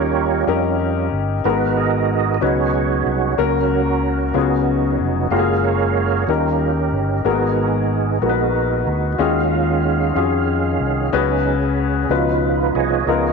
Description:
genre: gospel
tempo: 62 BPM (dotted quarters)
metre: 6/8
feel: straight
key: unclear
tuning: A4 = 440 Hz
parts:
  - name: clear baby grand piano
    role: accompaniment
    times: 0.0-13.3 s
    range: G#2 to B4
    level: -20 LUFS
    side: left 11 dB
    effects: none
  - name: tonewheel organ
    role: sustained chords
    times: 0.0-13.3 s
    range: D#3 to E#5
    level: -21 LUFS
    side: right 13 dB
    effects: slow rotary speaker, overdrive, chorus vibrato
  - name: fingered electric bass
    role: bass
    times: 0.0-13.3 s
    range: E#1 to E#2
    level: -22 LUFS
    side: right 1 dB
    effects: none
  - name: mellow French horn section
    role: sustained chords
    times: 13.1-13.3 s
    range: E#3 to D#5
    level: -25 LUFS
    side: right 1 dB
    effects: none
room: light reverb, studio ambience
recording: 1960s-style stereo with parts hard left and right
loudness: -16 LUFS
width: side -4 dB against mid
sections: 0.0-13.3 A section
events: tonewheel organ solo 0.0-13.3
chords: 0.0 D#7; 1.4 G#m9; 2.4 C#9sus4; 3.4 F#/C#; 4.4 C#7sus4; 5.3 F#maj9; 6.3 D#7; 7.3 G#m9; 9.2 D#m11; 11.1 C#7sus4; 12.1 C#9

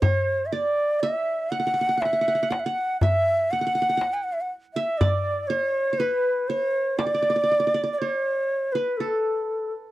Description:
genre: Arabic maqam ensemble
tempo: 121 BPM (eighths)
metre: 10/8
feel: straight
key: unclear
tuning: A4 = 440 Hz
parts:
  - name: bansuri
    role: melody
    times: 0.0-9.7 s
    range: A4 to G5+49c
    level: -23 LUFS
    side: equal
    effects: none
  - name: qanun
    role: second line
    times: 0.0-9.9 s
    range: A4 to F#5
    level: -30 LUFS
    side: right 5 dB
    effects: none
  - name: darbuka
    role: percussion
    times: 0.0-7.2 s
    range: none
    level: -24 LUFS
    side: left 1 dB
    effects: none
room: light reverb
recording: dry, close 1970s-style studio recording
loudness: -22 LUFS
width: side -16 dB against mid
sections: 0.0-9.9 A section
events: none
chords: none

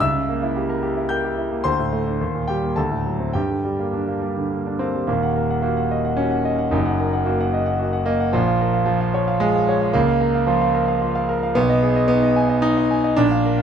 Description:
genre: classical, virtuoso piano study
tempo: 110 BPM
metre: 3/4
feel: rubato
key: Eb minor from 5.1 s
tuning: A4 = 440 Hz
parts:
  - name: clear concert grand piano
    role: solo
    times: 0.0-13.6 s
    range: Eb1 to G6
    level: -18 LUFS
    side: equal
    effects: none
room: light reverb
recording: close, detailed microphones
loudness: -18 LUFS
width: side -8 dB against mid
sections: 0.0-5.1 A section; 5.1-13.6 B section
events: none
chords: 0.0 C#dim7; 1.6 D5; 2.2 Eb; 2.8 D7; 3.3 Gm; 5.1 Ebm; 6.7 Ebm/Gb; 8.3 Bbm; 10.0 Bbm/Db; 11.6 Abm/Cb

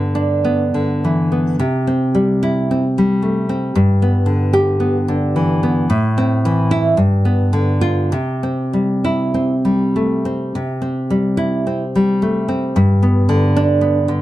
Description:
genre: romantic piece for solo classical guitar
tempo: 48-58 BPM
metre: 2/4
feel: rubato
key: C major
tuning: A4 = 440 Hz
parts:
  - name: nylon-string guitar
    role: solo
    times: 0.0-14.2 s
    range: G2 to G4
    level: -14 LUFS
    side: equal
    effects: none
room: moderate booth ambience, RT60 0.2 s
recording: dark, warm production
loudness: -14 LUFS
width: side -15 dB against mid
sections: 0.0-10.6 A section; 10.6-14.2 A section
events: none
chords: 0.0 G; 1.6 C; 3.7 G; 5.9 Am; 7.0 G7; 8.1 C; 12.8 G

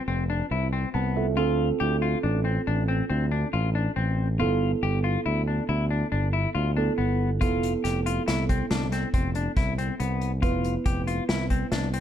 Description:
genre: progressive instrumental, band music in an uneven meter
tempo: 139 BPM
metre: 7/4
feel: straight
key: F lydian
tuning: A4 = 440 Hz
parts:
  - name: tine electric piano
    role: accompaniment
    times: 0.0-12.0 s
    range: B3 to A5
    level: -30 LUFS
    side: right 5 dB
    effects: none
  - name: semi-hollow electric guitar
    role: arpeggios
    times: 0.0-12.0 s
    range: B3 to G4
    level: -30 LUFS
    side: left 6 dB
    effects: none
  - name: overdriven fingered electric bass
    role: bass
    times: 0.1-12.0 s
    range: F1 to D2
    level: -26 LUFS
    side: equal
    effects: none
  - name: unplugged drum kit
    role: drums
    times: 7.4-12.0 s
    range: hi-hat, kick drum, snare drum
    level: -28 LUFS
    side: equal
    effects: none
room: light reverb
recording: dark, warm production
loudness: -23 LUFS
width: side -10 dB against mid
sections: 0.0-12.0 A section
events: tine electric piano fill 0.7-1.4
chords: 0.0 Fmaj7; 1.4 Dm7; 4.4 G7; 7.4 Fmaj7

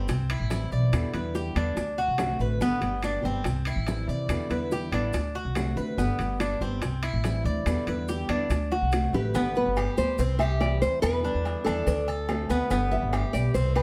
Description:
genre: latin, Cuban son and guajira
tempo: 143 BPM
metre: 4/4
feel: straight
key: G major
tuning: A4 = 439 Hz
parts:
  - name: fingerpicked steel-string acoustic guitar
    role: accompaniment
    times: 0.0-13.6 s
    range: B2 to G4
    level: -35 LUFS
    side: equal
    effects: none
  - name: Cuban tres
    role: arpeggios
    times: 0.0-13.8 s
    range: B3 to D5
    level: -33 LUFS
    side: equal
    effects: none
  - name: upright bass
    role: bass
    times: 0.0-13.8 s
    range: G1 to D3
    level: -31 LUFS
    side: equal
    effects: none
  - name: bongos and cowbell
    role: percussion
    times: 0.1-13.8 s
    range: none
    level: -38 LUFS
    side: equal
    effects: none
  - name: maracas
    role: percussion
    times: 0.1-13.8 s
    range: none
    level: -52 LUFS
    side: equal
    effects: none
  - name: timbales and agogo bells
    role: percussion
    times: 0.1-13.8 s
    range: none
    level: -39 LUFS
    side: equal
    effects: none
  - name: claves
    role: percussion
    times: 0.3-13.8 s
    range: none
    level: -47 LUFS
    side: equal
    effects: none
  - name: nylon-string guitar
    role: melody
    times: 9.1-13.8 s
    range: G4 to E5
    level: -31 LUFS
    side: equal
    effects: none
room: moderate studio reverb, RT60 0.7 s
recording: heard from further back in the room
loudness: -27 LUFS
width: mono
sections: 0.0-9.3 A section; 9.3-13.8 B section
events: drum fill 8.7-9.3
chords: 0.1 C; 0.9 Em7; 1.8 D7; 2.6 G; 3.5 C; 4.3 Em7; 5.1 D7; 6.0 G; 6.8 C; 7.7 Em7; 8.5 D7; 9.3 G; 10.2 C; 11.0 Em7; 11.9 D7; 12.7 G

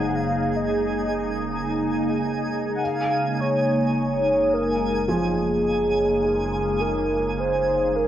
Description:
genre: ambient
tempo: 52 BPM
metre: 4/4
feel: straight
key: Gb major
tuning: A4 = 440 Hz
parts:
  - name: warm velvety synth lead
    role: melody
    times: 0.0-8.1 s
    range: Ab4 to Gb5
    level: -24 LUFS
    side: equal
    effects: chorus, cassette tape, tape echo
  - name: evolving wavetable pad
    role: sustained chords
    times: 0.0-8.1 s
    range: Db3 to Ab4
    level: -24 LUFS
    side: equal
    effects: ensemble chorus, built-in reverb, phaser, cassette tape
  - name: felt-muted upright piano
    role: arpeggios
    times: 0.0-8.1 s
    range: F3 to Ab3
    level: -33 LUFS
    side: right 1 dB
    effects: none
  - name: deep rumbling drone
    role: bass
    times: 0.0-8.1 s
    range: Gb1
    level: -36 LUFS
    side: equal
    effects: built-in reverb
  - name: twinkling granular texture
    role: texture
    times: 0.0-8.1 s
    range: Ab5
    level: -32 LUFS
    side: right 3 dB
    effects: built-in reverb, cassette tape
room: wet studio reverb, RT60 0.7 s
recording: home recording on cassette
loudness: -20 LUFS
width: side -11 dB against mid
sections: 0.0-8.1 A section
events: none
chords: 0.0 Gbmaj13; 2.8 Gbmaj9

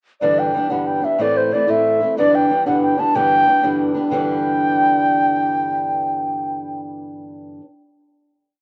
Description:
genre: celtic folk, Celtic jig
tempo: 123 BPM (dotted quarters)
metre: 6/8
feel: straight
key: G major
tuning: A4 = 440 Hz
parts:
  - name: baroque flute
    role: melody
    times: 0.2-6.8 s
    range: C5 to A5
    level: -20 LUFS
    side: equal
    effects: cassette tape
  - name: fingerpicked steel-string acoustic guitar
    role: accompaniment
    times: 0.2-7.6 s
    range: G2 to E4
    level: -23 LUFS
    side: equal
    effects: cassette tape
room: moderate spring reverb, RT60 2.3 s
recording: home recording on cassette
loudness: -18 LUFS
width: mono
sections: 0.2-4.1 A section; 4.1-6.1 final chord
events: none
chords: 0.2 G6; 1.2 Am; 2.2 G6

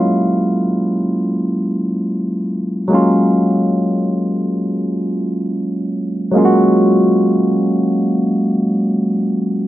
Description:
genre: R&B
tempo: free time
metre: none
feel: none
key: F# major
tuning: A4 = 440 Hz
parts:
  - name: barky tine electric piano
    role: solo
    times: 0.0-9.7 s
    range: F#3 to F#4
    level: -14 LUFS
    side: equal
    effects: overdrive, phaser
room: light reverb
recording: recorded outdoors, with no room sound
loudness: -14 LUFS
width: side -14 dB against mid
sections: 0.0-9.7 A section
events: none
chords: 0.0 F#maj9

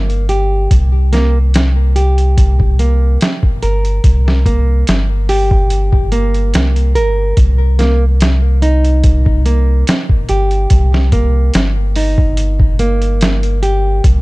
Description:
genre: trip hop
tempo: 72 BPM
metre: 4/4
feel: swing 53% on 16ths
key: C minor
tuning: A4 = 440 Hz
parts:
  - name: nylon-string guitar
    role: arpeggios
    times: 0.0-14.0 s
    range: Bb3 to Bb4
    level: -19 LUFS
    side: right 1 dB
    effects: ping-pong delay
  - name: soft dub sub bass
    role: bass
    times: 0.0-14.2 s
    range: G1 to C2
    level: -12 LUFS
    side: equal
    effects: none
  - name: trip hop sampler-style drum kit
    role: drums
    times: 0.1-14.2 s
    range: hi-hat, kick drum, snare drum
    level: -14 LUFS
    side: equal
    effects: studio reverb
room: digital ambience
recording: dark, warm production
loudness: -10 LUFS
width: side -22 dB against mid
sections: 0.0-14.2 A section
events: none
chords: 0.0 C7(no3) (rootless); 0.7 Gm; 7.4 Cm7

